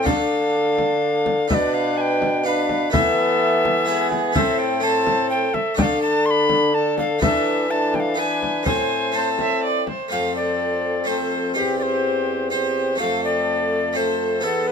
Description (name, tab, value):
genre	classical, renaissance-style consort dance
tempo	125 BPM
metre	3/4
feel	straight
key	unclear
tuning	A4 = 445 Hz
part	alto recorder	melody	0.0-14.7 s	G4 to C6	-23 LUFS	left 2 dB	none
part	rich viola	second line	0.0-14.7 s	G4 to E5	-26 LUFS	right 5 dB	none
part	brilliant trombone	accompaniment	0.0-14.7 s	A3 to D4	-26 LUFS	left 2 dB	none
part	harpsichord	accompaniment	0.0-14.7 s	E2 to D5	-26 LUFS	equal	none
part	mellow bassoon	bass	0.0-14.7 s	E2 to E3	-25 LUFS	left 1 dB	none
part	frame drum	percussion	0.1-10.1 s	none	-24 LUFS	left 1 dB	none
room	light reverb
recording	close, detailed microphones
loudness	-18 LUFS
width	side -6 dB against mid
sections	0.0-10.1 A section; 10.1-14.7 B section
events	none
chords	0.1 Dm; 1.5 Bdim; 2.9 Esus4; 3.9 E; 4.4 Am; 5.8 D5; 7.2 E7sus4; 8.2 E7; 8.7 Am; 10.1 F; 11.6 C/E; 13.0 F